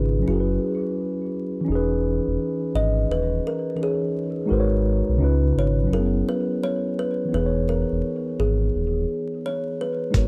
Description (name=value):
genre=lo-fi hip hop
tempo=85 BPM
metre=4/4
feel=swing 64% on 16ths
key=C# dorian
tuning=A4 = 440 Hz
part: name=kalimba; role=melody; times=0.0-10.3 s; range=F#4 to D#5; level=-30 LUFS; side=equal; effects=analog delay, plate reverb
part: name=mellow tine electric piano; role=accompaniment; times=0.0-10.3 s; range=C#3 to C#5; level=-27 LUFS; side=equal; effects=cassette tape, plate reverb
part: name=sub bass with octave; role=bass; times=0.0-10.3 s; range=D#1 to C#2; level=-25 LUFS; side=equal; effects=none
part: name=dusty soul sampler-style drum kit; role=drums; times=10.1-10.3 s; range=hi-hat, kick drum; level=-23 LUFS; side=equal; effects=overdrive
room=light reverb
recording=vinyl crackle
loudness=-23 LUFS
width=mono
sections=0.0-10.3 A section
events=none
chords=0.3 F#9sus4; 1.7 C#m9/E; 4.5 G#m11; 5.2 C#7; 5.9 F#9sus4; 7.3 C#m9/E